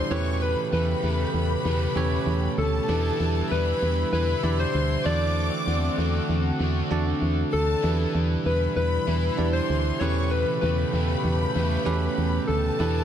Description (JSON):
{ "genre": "pop", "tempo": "97 BPM", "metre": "4/4", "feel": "straight", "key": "unclear", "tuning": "A4 = 439 Hz", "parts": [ { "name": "soft struck synth lead", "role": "melody", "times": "0.0-13.0 s", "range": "A4 to D5", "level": "-29 LUFS", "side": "left 2 dB", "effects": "chorus, tremolo" }, { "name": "warm studio violin section", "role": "second line", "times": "0.0-13.0 s", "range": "A5 to D6", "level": "-34 LUFS", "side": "left 1 dB", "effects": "tape echo" }, { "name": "bell-like tine electric piano", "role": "accompaniment", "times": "0.0-13.0 s", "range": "E3 to D5", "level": "-30 LUFS", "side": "right 6 dB", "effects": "none" }, { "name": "crunchy overdriven guitar", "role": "accompaniment", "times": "0.0-13.0 s", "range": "A2 to E4", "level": "-34 LUFS", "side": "equal", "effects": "analog chorus" }, { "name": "chorused pulse-width pad", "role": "sustained chords", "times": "0.0-13.0 s", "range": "B2 to G4", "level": "-31 LUFS", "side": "left 1 dB", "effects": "none" }, { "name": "solid FM bass", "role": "bass", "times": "0.0-13.0 s", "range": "D2 to E2", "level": "-25 LUFS", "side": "equal", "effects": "none" } ], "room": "light reverb, digital ambience", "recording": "none", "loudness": "-22 LUFS", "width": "side -9 dB against mid", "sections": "0.0-13.0 A section", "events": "none", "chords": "0.1 A9/E; 2.9 Em7; 5.1 D7/E; 7.8 Em7; 10.0 A9/E" }